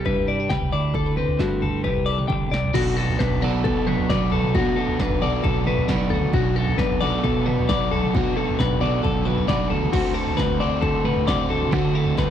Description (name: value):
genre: math rock and midwest emo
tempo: 134 BPM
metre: 4/4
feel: straight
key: unclear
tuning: A4 = 438 Hz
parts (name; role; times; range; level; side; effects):
- twelve-string electric guitar; accompaniment; 0.0-12.3 s; A2 to C5; -27 LUFS; right 8 dB; spring reverb
- clean electric guitar; arpeggios; 0.0-12.3 s; F#4 to G5; -25 LUFS; left 8 dB; spring reverb, slapback echo
- fuzz fingered electric bass; bass; 0.0-12.3 s; B1 to D3; -26 LUFS; equal; overdrive
- punchy analog drum machine; drums; 0.1-12.3 s; crash cymbal, kick drum, snare drum, toms; -26 LUFS; equal; none
- overdriven electric guitar; riff; 2.7-12.3 s; B2 to F#4; -27 LUFS; right 1 dB; spring reverb
room: little or no reverb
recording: dry, close 1970s-style studio recording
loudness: -19 LUFS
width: side -10 dB against mid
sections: 0.0-2.8 A section; 2.8-12.3 B section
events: drum fill 2.3-2.8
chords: 0.0 Cmaj9; 0.7 D13; 1.9 Csus2; 2.8 Bm7; 9.9 D7